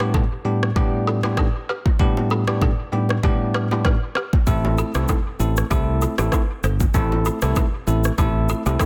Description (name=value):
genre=afrobeats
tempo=97 BPM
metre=4/4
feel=swing 55% on 16ths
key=A minor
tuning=A4 = 440 Hz
part: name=bell-like tine electric piano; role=accompaniment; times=0.0-8.9 s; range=A2 to A4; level=-25 LUFS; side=equal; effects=none
part: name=balafon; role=riff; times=0.0-8.9 s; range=D4 to C5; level=-31 LUFS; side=equal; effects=tape echo
part: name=afro-pop drum kit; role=drums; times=0.0-8.9 s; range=kick drum, rim click, shaker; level=-24 LUFS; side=equal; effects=none
part: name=bongos and congas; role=percussion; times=0.1-8.9 s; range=none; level=-32 LUFS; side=equal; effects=none
part: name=fingered electric bass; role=bass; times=4.5-8.8 s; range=G1 to C2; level=-23 LUFS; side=equal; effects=none
room=digital ambience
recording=dense, heavily limited modern master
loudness=-20 LUFS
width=mono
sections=0.0-8.9 A section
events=break 0.0-4.5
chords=0.0 G/A; 4.5 Am